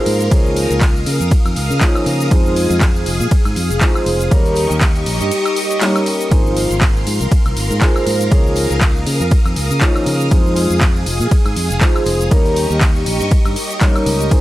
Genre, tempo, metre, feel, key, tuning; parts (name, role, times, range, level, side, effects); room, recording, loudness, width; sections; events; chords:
filtered disco house; 120 BPM; 4/4; swing 57% on 16ths; A4 = 440 Hz
dark grand piano; accompaniment; 0.0-14.4 s; F3 to Bb4; -20 LUFS; equal; phaser, sidechain pumping
string machine, full ensemble; sustained chords; 0.0-14.4 s; G4 to Eb6; -22 LUFS; equal; ensemble chorus, sidechain pumping
fingered electric bass; bass; 0.1-14.4 s; F1 to Db3; -19 LUFS; equal; sidechain pumping
punchy analog drum machine; drums; 0.1-14.4 s; handclaps, hi-hat, ride cymbal, shaker, woodblock; -23 LUFS; left 1 dB; overdrive, sidechain pumping on perc, sidechain pumping on hats, sidechain pumping on cymbals
tambourine; percussion; 0.1-14.4 s; -33 LUFS; right 4 dB
electronic kick drum; drums; 0.3-14.4 s; -13 LUFS; equal; overdrive
digital ambience; dry, gritty hardware recording; -12 LUFS; side -16 dB against mid
0.0-14.4 A section
0.3 Db69; 2.3 Fm7; 4.3 Eb7; 6.3 Ab69; 8.3 Db69; 10.3 Fm7; 12.3 Eb7